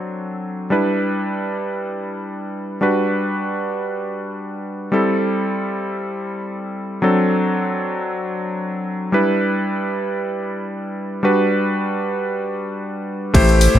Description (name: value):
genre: nu-disco, nu disco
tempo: free time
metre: none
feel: none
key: unclear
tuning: A4 = 442 Hz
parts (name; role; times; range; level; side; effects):
- warm electric grand piano; accompaniment; 0.0-13.8 s; F#3 to C5; -19 LUFS; equal; ping-pong delay
- fat analog bass; bass; 13.3-13.8 s; A1; -13 LUFS; equal; none
- electronic kick drum; drums; 13.3-13.5 s; none; -15 LUFS; equal; small room ambience
- pop drum kit; drums; 13.3-13.8 s; crash cymbal, hi-hat, ride cymbal; -23 LUFS; left 3 dB; small room ambience
room: light reverb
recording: none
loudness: -19 LUFS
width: side -11 dB against mid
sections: 0.0-13.3 A section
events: none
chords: 0.0 D7; 0.7 Em7; 2.8 Gmaj7; 4.9 Am7; 7.0 D7; 9.1 Em7; 11.2 Gmaj7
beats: free time